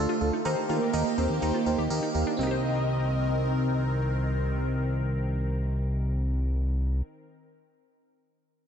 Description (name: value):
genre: synth-pop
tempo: 124 BPM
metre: 4/4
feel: straight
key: C minor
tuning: A4 = 441 Hz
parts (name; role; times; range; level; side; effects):
- FM electric piano; accompaniment; 0.0-7.3 s; C4 to Bb4; -34 LUFS; right 2 dB; chorus, phaser
- phased analog pad; sustained chords; 0.0-7.0 s; D3 to Bb4; -32 LUFS; right 2 dB; phaser, chorus
- fat analog bass; bass; 0.0-7.0 s; C2 to Eb3; -27 LUFS; equal; none
- analog pluck; arpeggios; 0.1-7.4 s; C4 to C5; -36 LUFS; equal; chorus, tape echo
- mellow synth brass; second line; 0.2-3.8 s; A4 to F5; -34 LUFS; left 2 dB; chorus, tape echo
room: moderate lush hall reverb, RT60 3.0 s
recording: dreamy mix soaked in reverb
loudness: -25 LUFS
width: side -8 dB against mid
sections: 0.0-2.4 A section; 2.4-6.3 B section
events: none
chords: 0.5 Eb; 2.4 Cm7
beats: | 0.45 0.94 1.42 1.91 | 2.39 2.87 3.36 3.84 | 4.32 4.81 5.29 5.78